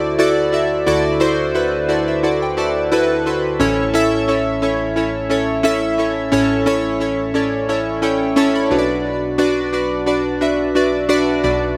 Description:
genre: pop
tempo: 88 BPM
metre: 4/4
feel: swing 55% on 16ths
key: unclear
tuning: A4 = 440 Hz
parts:
  - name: chorused retro synth keys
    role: solo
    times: 0.0-11.8 s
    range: A1 to C6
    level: -17 LUFS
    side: equal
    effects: digital delay
room: moderate lush hall reverb, RT60 2.3 s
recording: none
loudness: -17 LUFS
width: mono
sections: 0.0-3.6 A section; 3.6-11.8 B section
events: synth keys fill 1.6-3.6, 7.0-9.1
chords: 0.0 Dadd9; 3.6 A; 8.7 Bm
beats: 0.19 | 0.87 1.55 2.24 2.92 | 3.60 4.28 4.96 5.65 | 6.33 7.01 7.69 8.37 | 9.05 9.74 10.42 11.10

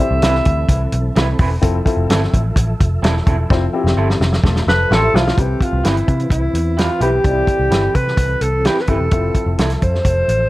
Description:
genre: uptempo 1960s-style soul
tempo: 128 BPM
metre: 4/4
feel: straight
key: C major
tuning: A4 = 442 Hz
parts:
  - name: mellow alto saxophone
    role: melody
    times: 0.0-1.1, 4.7-10.5 s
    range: E4 to E5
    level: -19 LUFS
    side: equal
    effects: none
  - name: dark upright piano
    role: accompaniment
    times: 0.0-9.7 s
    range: C4 to E5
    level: -22 LUFS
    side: left 4 dB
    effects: none
  - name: mellow tonewheel organ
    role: sustained chords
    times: 0.0-10.5 s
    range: E3 to E5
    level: -28 LUFS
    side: equal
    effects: chorus vibrato, fast rotary speaker
  - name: vintage muted picked electric bass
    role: bass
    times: 0.1-10.5 s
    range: E1 to C3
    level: -18 LUFS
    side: equal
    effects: none
  - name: electric guitar through a small old amp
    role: stabs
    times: 0.2-9.7 s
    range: C4 to B4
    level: -26 LUFS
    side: right 3 dB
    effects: spring reverb, analog delay
  - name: warm soul drum kit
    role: drums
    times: 0.2-10.4 s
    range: hi-hat, kick drum, snare drum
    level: -17 LUFS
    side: equal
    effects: none
  - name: electric guitar through a small old amp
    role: riff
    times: 4.4-5.4 s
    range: A3 to C5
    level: -25 LUFS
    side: left 5 dB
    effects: analog chorus
room: light reverb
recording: cassette tape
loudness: -13 LUFS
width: side -18 dB against mid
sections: 0.0-5.4 A section; 5.4-10.5 B section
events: drum fill 3.5-5.4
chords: 0.0 Cmaj7; 1.6 Fmaj7; 5.4 Cmaj7; 9.1 Fmaj7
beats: 0.23 0.69 1.16 | 1.63 2.10 2.56 3.03 | 3.50 3.96 4.43 4.90 | 5.37 5.83 6.30 6.77 | 7.24 7.71 8.18 8.65 | 9.12 9.59 10.05

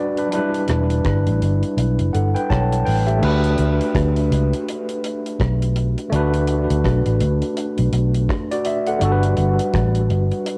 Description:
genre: lovers rock reggae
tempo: 83 BPM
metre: 4/4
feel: swing 60% on 16ths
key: D major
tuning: A4 = 440 Hz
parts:
  - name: bright tine electric piano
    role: accompaniment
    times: 0.0-10.6 s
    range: F#3 to A5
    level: -23 LUFS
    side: equal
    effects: cassette tape, tape echo
  - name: deep reggae drum kit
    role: drums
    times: 0.2-10.6 s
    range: crash cymbal, hi-hat, kick drum, rim click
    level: -29 LUFS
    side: equal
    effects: cassette tape
  - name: vintage muted fingered electric bass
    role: bass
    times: 0.7-10.3 s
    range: E1 to D2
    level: -21 LUFS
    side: equal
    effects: none
room: light reverb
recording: home recording on cassette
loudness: -19 LUFS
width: mono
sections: 0.0-3.2 A section; 3.2-10.6 B section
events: none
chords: 0.3 Em7; 3.2 D6; 9.0 Gmaj7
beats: | 0.32 1.05 1.77 2.50 | 3.22 3.95 4.67 5.39 | 6.12 6.84 7.57 8.29 | 9.01 9.74 10.46

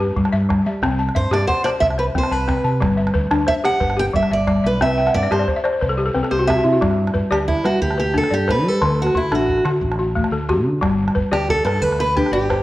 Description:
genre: west african traditional, West African string and xylophone music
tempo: 120 BPM (dotted quarters)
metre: 12/8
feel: straight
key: G major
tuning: A4 = 440 Hz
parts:
  - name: picked steel-string acoustic guitar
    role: melody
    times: 0.0-12.6 s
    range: E4 to G5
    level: -20 LUFS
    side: right 2 dB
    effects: none
  - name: balafon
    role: arpeggios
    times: 0.0-12.6 s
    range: D3 to A5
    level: -20 LUFS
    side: left 2 dB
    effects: none
  - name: mellow fretless electric bass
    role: bass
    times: 0.0-12.6 s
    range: G1 to G3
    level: -22 LUFS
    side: equal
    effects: none
  - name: calabash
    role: percussion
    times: 0.2-12.6 s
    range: none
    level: -26 LUFS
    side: right 2 dB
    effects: none
room: moderate recital hall reverb, RT60 1.4 s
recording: worn, warbling old tape, cassette tape, warbly pitch drift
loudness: -16 LUFS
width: side -16 dB against mid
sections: 0.0-6.8 A section; 6.8-12.6 B section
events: steel-string acoustic guitar solo 0.0-6.8; balafon fill 5.0-6.8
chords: 0.0 G; 0.8 C; 2.8 G; 4.8 C; 6.8 G; 8.8 D; 10.8 G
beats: 0.32 | 0.82 1.32 1.81 2.31 | 2.81 3.31 3.81 4.30 | 4.80 5.30 5.81 6.31 | 6.81 7.31 7.81 8.31 | 8.81 9.32 9.82 10.32 | 10.82 11.32 11.83 12.33

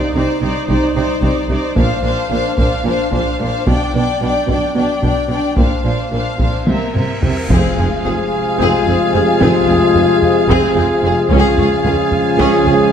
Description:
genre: cinematic, epic orchestral film score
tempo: 221 BPM (eighths)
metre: 7/8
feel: straight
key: C minor, F minor from 7.5 s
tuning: A4 = 438 Hz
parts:
  - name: warm symphonic violin section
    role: melody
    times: 0.0-12.9 s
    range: D5 to G5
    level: -23 LUFS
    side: left 3 dB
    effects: none
  - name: clear chamber violin section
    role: second line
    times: 0.0-12.8 s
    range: Ab4 to D5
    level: -22 LUFS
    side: left 3 dB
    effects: none
  - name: warm symphonic viola section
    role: accompaniment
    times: 0.0-12.7 s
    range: C4 to Eb4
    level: -22 LUFS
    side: right 1 dB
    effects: none
  - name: warm symphonic double bass section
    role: bass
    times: 0.1-12.7 s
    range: F1 to Db2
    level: -23 LUFS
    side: right 2 dB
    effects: none
  - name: rich symphonic cello section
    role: bass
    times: 0.2-12.7 s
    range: Db2 to C3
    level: -21 LUFS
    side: right 2 dB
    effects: none
  - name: taiko ensemble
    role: drums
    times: 0.7-12.9 s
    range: none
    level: -20 LUFS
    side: equal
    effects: none
  - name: cymbal swell and impact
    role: sound effects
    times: 6.7-9.4 s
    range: none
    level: -28 LUFS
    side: equal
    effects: none
  - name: clear woodwind section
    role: sustained chords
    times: 7.5-12.9 s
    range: C4 to Ab5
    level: -22 LUFS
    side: equal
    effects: none
  - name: dark trombone section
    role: sustained chords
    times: 7.5-12.9 s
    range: C3 to F3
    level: -19 LUFS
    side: right 1 dB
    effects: none
  - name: mellow French horn section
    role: sustained chords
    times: 7.5-12.9 s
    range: Ab3 to F4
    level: -19 LUFS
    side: left 6 dB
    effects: none
  - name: warm trumpet section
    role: stabs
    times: 7.5-12.9 s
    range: Ab4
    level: -19 LUFS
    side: left 1 dB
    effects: none
  - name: mellow tuba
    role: bass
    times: 7.5-12.8 s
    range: F1 to Db2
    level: -22 LUFS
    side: right 2 dB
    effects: none
room: wet scoring stage reverb, RT60 2.0 s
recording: none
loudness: -12 LUFS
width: side -8 dB against mid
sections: 0.0-7.5 A section; 7.5-12.9 B section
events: drum fill 6.7-7.5; cymbal swell 6.7-7.5; impact 7.5-9.4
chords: 0.0 Cmadd9; 1.8 Bbadd9; 3.7 G/B; 5.6 Bbadd9; 6.7 C7; 7.5 Fm; 11.3 Db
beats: 0.14 0.41 0.69 0.96 1.23 1.50 | 1.76 2.04 2.31 2.58 2.85 3.12 3.40 | 3.67 3.94 4.21 4.48 4.75 5.03 5.30 | 5.57 5.84 6.12 6.40 6.67 6.95 7.23 | 7.50 7.78 8.05 8.32 8.60 8.87 9.14 | 9.41 9.68 9.96 10.22 10.49 10.77 11.04 | 11.31 11.58 11.85 12.12 12.39 12.66

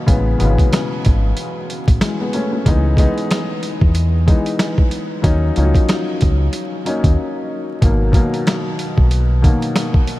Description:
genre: hip hop, boom-bap hip-hop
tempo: 93 BPM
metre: 4/4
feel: swing 58% on 16ths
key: G# minor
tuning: A4 = 440 Hz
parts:
  - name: warm upright piano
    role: accompaniment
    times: 0.0-10.2 s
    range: B2 to D#4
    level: -20 LUFS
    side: left 2 dB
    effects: cassette tape
  - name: deep dub fingered electric bass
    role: bass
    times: 0.1-9.5 s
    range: G#1 to E2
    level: -16 LUFS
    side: equal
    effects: none
  - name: boom bap sampler-style drum kit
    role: drums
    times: 0.1-10.2 s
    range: hi-hat, kick drum, snare drum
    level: -17 LUFS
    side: equal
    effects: none
room: light reverb, digital ambience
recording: vinyl crackle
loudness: -14 LUFS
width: side -17 dB against mid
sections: 0.0-10.2 A section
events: break 7.2-7.8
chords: 0.1 Amaj7; 2.7 C#m7; 5.2 D#m7; 7.8 G#m7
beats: | 0.08 0.72 1.37 2.02 | 2.66 3.31 3.95 4.60 | 5.24 5.89 6.53 7.18 | 7.82 8.47 9.11 9.76

